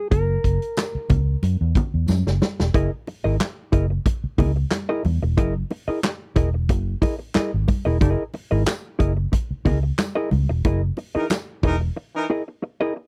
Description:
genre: funk.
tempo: 91 BPM.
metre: 4/4.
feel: straight.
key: unclear.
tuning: A4 = 437 Hz.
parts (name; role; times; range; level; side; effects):
hollow-body jazz guitar; accompaniment; 0.0-13.0 s; Fb4 to Eb5; -27 LUFS; equal; none.
vintage muted fingered electric bass; bass; 0.1-11.9 s; Fb1 to Gb2; -23 LUFS; equal; none.
swinging big-band drum kit; drums; 0.1-11.8 s; handclaps, hi-hat, kick drum, snare drum; -24 LUFS; equal; none.
congas; percussion; 0.1-11.5 s; none; -31 LUFS; equal; none.
tambourine; percussion; 0.8-2.2, 8.7-11.5 s; none; -43 LUFS; equal; none.
warm horn section; second line; 11.2-12.2 s; Fb3 to Bb4; -27 LUFS; equal; none.
room: little or no reverb.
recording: dry, close 1970s-style studio recording.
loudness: -22 LUFS.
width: mono.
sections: 0.0-2.7 A section; 2.7-13.1 B section.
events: hollow-body jazz guitar solo 0.0-2.7; drum fill 2.1-2.7; band accent 10.7-13.1; break 12.0-13.1.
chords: 0.0 Gb7; 2.7 Gb13.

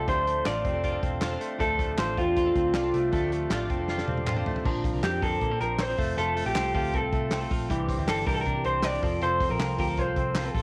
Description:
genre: jangly indie pop.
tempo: 158 BPM.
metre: 4/4.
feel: straight.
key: F major.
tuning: A4 = 439 Hz.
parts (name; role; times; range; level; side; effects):
electric guitar through a small old amp; melody; 0.0-10.6 s; F4 to D5; -30 LUFS; equal; cassette tape.
chorused retro synth keys; accompaniment; 0.0-4.7 s; D4 to D5; -41 LUFS; equal; cassette tape.
direct-recorded clean electric guitar; accompaniment; 0.0-10.6 s; Bb2 to Bb4; -39 LUFS; equal; cassette tape.
semi-hollow electric guitar; arpeggios; 0.0-10.6 s; E3 to A4; -36 LUFS; equal; phaser, cassette tape, tape echo.
vintage muted picked electric bass; bass; 0.0-10.6 s; E1 to C3; -35 LUFS; equal; none.
loose indie drum kit; drums; 0.1-10.6 s; crash cymbal, hi-hat, kick drum, snare drum, toms; -34 LUFS; equal; none.
group handclap; percussion; 0.5-10.4 s; none; -40 LUFS; equal; none.
room: moderate spring reverb, RT60 1.9 s.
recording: home recording on cassette.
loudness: -27 LUFS.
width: mono.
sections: 0.0-4.7 A section; 4.7-10.6 B section.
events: drum fill 3.9-4.7.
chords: 0.0 Dm7; 4.7 Bbadd9; 6.0 F; 7.7 Cadd9; 9.0 F.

